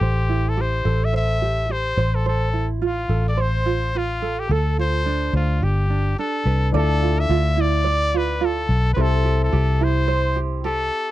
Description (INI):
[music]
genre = acoustic pop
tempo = 107 BPM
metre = 4/4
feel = swing 55% on 16ths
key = unclear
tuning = A4 = 439 Hz
[part]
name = bright trumpet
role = melody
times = 0.0-11.1 s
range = F4 to E5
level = -24 LUFS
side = left 2 dB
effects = none
[part]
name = tenor ukulele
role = accompaniment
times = 0.0-11.1 s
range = D4 to D5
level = -26 LUFS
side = right 8 dB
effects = none
[part]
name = vintage muted fingered electric bass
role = bass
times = 0.0-10.9 s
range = G1 to D2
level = -20 LUFS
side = left 1 dB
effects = none
[part]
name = warm concert grand piano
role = accompaniment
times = 6.7-11.1 s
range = C4 to E5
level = -31 LUFS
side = left 9 dB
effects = none
[sound]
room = little or no reverb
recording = dry, close 1970s-style studio recording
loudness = -18 LUFS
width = side -14 dB against mid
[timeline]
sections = 0.0-6.7 A section; 6.7-11.1 B section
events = none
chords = 0.0 Am7; 2.0 Fmaj7/A; 4.5 Dm7; 5.6 G; 6.7 Dmadd9; 9.0 Am7/C